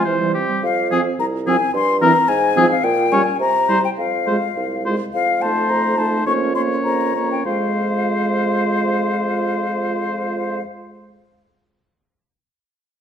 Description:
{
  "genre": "quick classical-period movement for wind quintet",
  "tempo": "96-110 BPM",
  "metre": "2/4",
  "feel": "rubato",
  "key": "F minor",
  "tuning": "A4 = 440 Hz",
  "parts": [
    { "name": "mellow concert flute", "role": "melody", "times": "0.0-10.6 s", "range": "F5 to Db6", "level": "-21 LUFS", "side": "left 6 dB", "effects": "none" },
    { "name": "clear oboe", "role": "second line", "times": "0.0-10.6 s", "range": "G4 to Db5", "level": "-24 LUFS", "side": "left 2 dB", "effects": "none" },
    { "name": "dark clarinet", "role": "accompaniment", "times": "0.0-10.6 s", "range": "E3 to F4", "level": "-26 LUFS", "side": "right 9 dB", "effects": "none" },
    { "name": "mellow French horn", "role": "accompaniment", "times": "0.0-10.6 s", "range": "E3 to Bb3", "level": "-24 LUFS", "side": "right 1 dB", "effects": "none" },
    { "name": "mellow bassoon", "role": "bass", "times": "0.0-10.6 s", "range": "C2 to C3", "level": "-23 LUFS", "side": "right 3 dB", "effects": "none" }
  ],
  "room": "wet recital hall reverb, RT60 1.3 s",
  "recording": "none",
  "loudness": "-16 LUFS",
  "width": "side -8 dB against mid",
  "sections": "0.0-5.1 A section; 5.1-7.5 B section; 7.5-9.9 C section",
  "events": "slowing down 4.6-7.5",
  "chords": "0.1 C; 0.6 Fm; 1.7 C7/G; 2.3 Fm/Ab; 2.8 Gdim/Bb; 3.4 C7; 4.0 Fm; 5.1 F7; 6.3 Bbm/F; 7.5 Fm"
}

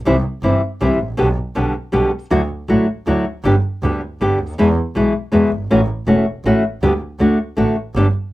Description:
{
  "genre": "tango",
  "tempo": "159 BPM",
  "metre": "3/4",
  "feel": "rubato",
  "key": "G major",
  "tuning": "A4 = 440 Hz",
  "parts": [
    { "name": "clear double bass", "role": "bass", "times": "0.0-8.1 s", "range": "E1 to E2", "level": "-20 LUFS", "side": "right 1 dB", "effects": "none" },
    { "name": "nylon-string guitar", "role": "accompaniment", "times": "0.1-8.1 s", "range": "B2 to G4", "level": "-15 LUFS", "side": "left 1 dB", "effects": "none" }
  ],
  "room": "light reverb",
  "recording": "none",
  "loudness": "-15 LUFS",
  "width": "side -17 dB against mid",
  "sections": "0.0-8.3 A section",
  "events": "none",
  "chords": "0.1 C; 1.2 G/B; 2.3 Dadd9; 3.4 G; 4.6 E; 5.7 A6; 6.8 G/D; 7.2 D"
}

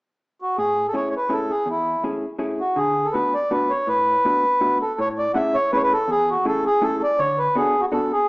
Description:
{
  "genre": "musette waltz",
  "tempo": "163 BPM",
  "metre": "3/4",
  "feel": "straight",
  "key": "A major",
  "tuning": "A4 = 439 Hz",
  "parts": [
    { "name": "mellow accordion", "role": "melody", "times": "0.4-8.3 s", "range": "E4 to F#5", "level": "-19 LUFS", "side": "equal", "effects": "none" },
    { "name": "hollow-body jazz guitar", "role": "accompaniment", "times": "0.6-8.1 s", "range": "E2 to A4", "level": "-26 LUFS", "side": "equal", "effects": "none" }
  ],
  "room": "moderate large studio reverb, RT60 1.0 s",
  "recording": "band playing live in one room, small speaker sound",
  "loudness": "-18 LUFS",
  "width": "side -27 dB against mid",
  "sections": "0.6-5.0 A section; 5.0-8.3 B section",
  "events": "none",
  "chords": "0.0 N.C.; 0.6 Amaj7; 2.8 D6; 5.0 Amaj7; 7.2 D6"
}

